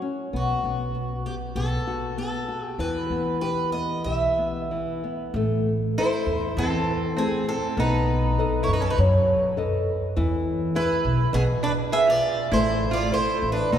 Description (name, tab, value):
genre	fado-style ballad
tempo	91-103 BPM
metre	4/4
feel	rubato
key	E harmonic minor, A harmonic minor from 5.3 s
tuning	A4 = 440 Hz
part	nylon-string guitar	accompaniment	0.0-13.8 s	B2 to E5	-27 LUFS	left 2 dB	none
part	upright bass	bass	0.3-13.8 s	A1 to F#2	-26 LUFS	equal	none
part	picked twelve-string acoustic guitar	melody	0.4-13.8 s	F#4 to E5	-26 LUFS	right 1 dB	none
part	lap resonator guitar	second line	6.0-13.8 s	B3 to G#4	-29 LUFS	right 2 dB	none
room	wet church reverb, RT60 3.5 s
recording	recorded in a church or concert hall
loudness	-22 LUFS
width	side -9 dB against mid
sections	0.0-5.3 A section; 5.3-13.8 B section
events	none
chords	0.3 B5; 2.8 Em; 5.3 Am; 7.8 B7; 10.2 E; 12.5 Am